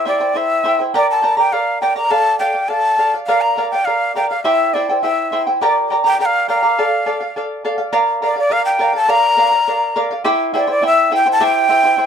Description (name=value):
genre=andean folk, Andean ensemble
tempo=103 BPM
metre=2/4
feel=straight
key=unclear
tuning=A4 = 438 Hz
part: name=breathy quena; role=melody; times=0.0-12.1 s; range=D5 to Bb5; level=-15 LUFS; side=left 1 dB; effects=plate reverb
part: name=charango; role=accompaniment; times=0.0-12.1 s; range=E4 to Bb5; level=-17 LUFS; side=right 1 dB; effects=none
room=light reverb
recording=dark, warm production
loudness=-13 LUFS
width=side -7 dB against mid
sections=0.0-7.9 A section; 7.9-12.1 B section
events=none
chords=0.0 C; 1.0 Gm; 2.1 Dm; 3.3 Bb; 4.5 C; 5.6 Gm; 6.8 Dm; 7.9 Bb; 10.3 C